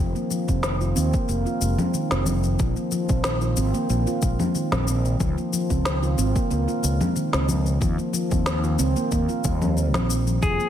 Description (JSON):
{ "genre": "organic downtempo", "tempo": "92 BPM", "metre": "4/4", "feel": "swing 53% on 16ths", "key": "F minor", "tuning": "A4 = 440 Hz", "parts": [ { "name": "handpan", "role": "arpeggios", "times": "0.0-10.7 s", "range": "Eb3 to F4", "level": "-25 LUFS", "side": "right 1 dB", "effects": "low-pass filter, ping-pong delay" }, { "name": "fretless electric bass", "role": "bass", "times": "0.0-10.6 s", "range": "F1 to Eb2", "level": "-24 LUFS", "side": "equal", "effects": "sidechain pumping" }, { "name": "electronic shaker, snare drum and congas", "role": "drums", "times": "0.2-10.7 s", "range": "none", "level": "-27 LUFS", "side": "left 2 dB", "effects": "overdrive" }, { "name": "electronic kick drum", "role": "drums", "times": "0.5-10.6 s", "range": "none", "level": "-25 LUFS", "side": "equal", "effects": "overdrive" }, { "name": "clean lap steel guitar", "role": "melody", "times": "10.4-10.7 s", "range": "Ab4", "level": "-22 LUFS", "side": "left 2 dB", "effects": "none" } ], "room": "digital ambience", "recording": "none", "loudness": "-20 LUFS", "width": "side -10 dB against mid", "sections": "0.0-10.7 A section", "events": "none", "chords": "0.0 F7(no3); 2.6 Bb5; 5.2 Dbmaj9; 7.8 Eb5" }